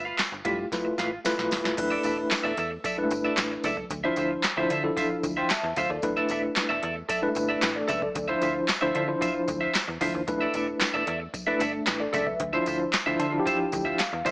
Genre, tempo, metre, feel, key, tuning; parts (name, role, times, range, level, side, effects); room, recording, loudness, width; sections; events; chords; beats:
early-eighties boogie funk; 113 BPM; 4/4; straight; A4 = 440 Hz
clean electric guitar; riff; 0.0-14.3 s; F4 to F5; -29 LUFS; right 1 dB; lush chorus
slap-like FM bass; bass; 0.0-14.3 s; D#1 to D3; -36 LUFS; equal
booming analog drum machine; drums; 0.2-14.3 s; crash cymbal, handclaps, hi-hat, kick drum, snare drum; -29 LUFS; equal; overdrive
tambourine; percussion; 0.2-14.3 s; -41 LUFS; left 2 dB
tine electric piano; accompaniment; 0.5-14.3 s; F3 to C6; -27 LUFS; left 1 dB; fast tremolo
light reverb, digital ambience; small speaker sound; -24 LUFS; side -24 dB against mid
0.0-1.8 A section; 1.8-14.3 B section
drum fill 0.7-1.8; tine electric piano fill 12.9-14.3
0.0 G13; 1.8 E7sus4; 3.9 Dm9; 6.0 E7sus4; 8.2 Dm9; 10.3 E7sus4; 12.4 Dm9
0.19 0.72 1.25 | 1.78 2.31 2.84 3.38 | 3.91 4.44 4.97 5.50 | 6.03 6.56 7.09 7.62 | 8.15 8.69 9.22 9.75 | 10.28 10.81 11.34 11.87 | 12.40 12.93 13.46 13.99